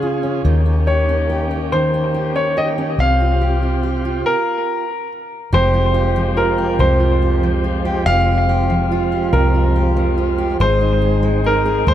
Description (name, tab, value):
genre	pop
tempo	47 BPM (dotted quarters)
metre	6/8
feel	straight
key	F minor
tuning	A4 = 440 Hz
part	clear baby grand piano	melody	0.0-11.9 s	Bb4 to F5	-20 LUFS	equal	analog delay
part	fingerpicked steel-string acoustic guitar	accompaniment	0.0-11.9 s	F2 to Ab4	-21 LUFS	right 2 dB	none
part	overdriven tonewheel organ	sustained chords	0.0-11.9 s	C3 to Ab4	-25 LUFS	left 1 dB	slow rotary speaker
part	vintage muted fingered electric bass	bass	0.0-11.9 s	F1 to Eb2	-18 LUFS	left 1 dB	none
room	light reverb, studio ambience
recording	echo-heavy mix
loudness	-14 LUFS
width	side -11 dB against mid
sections	0.0-5.5 A section; 5.5-11.9 B section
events	stop 4.3-5.5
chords	0.4 Eb7; 3.0 Csus4; 5.5 Fmadd9; 10.6 Ab